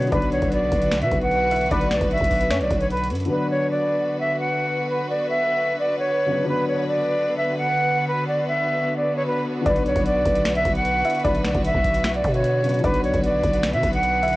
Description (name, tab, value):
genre	hip hop, trap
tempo	151 BPM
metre	4/4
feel	half-time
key	B minor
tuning	A4 = 442 Hz
part	mellow jazz flute	melody	0.0-14.4 s	B4 to F#5	-22 LUFS	right 1 dB	cassette tape
part	warbly dusty pluck	second line	0.0-2.9, 9.7-14.4 s	C#5 to E5	-28 LUFS	left 1 dB	chorus, cassette tape, tape echo
part	dark grand piano	accompaniment	0.0-14.4 s	C#3 to B4	-29 LUFS	left 2 dB	cassette tape
part	rich symphonic string section	sustained chords	0.0-14.4 s	D3 to B4	-28 LUFS	equal	cassette tape
part	growling 808-style bass	bass	0.0-3.3, 9.7-14.4 s	B1 to B2	-25 LUFS	equal	none
part	booming analog drum machine	drums	0.0-3.3, 9.7-14.4 s	finger snaps, hi-hat, kick drum, snare drum	-26 LUFS	equal	vintage 12-bit sampler grit, cassette tape
room	light reverb, small room ambience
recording	home recording on cassette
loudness	-19 LUFS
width	side -18 dB against mid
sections	0.0-3.3 A section; 3.3-14.4 A section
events	none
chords	0.0 Bmadd9; 3.3 Bm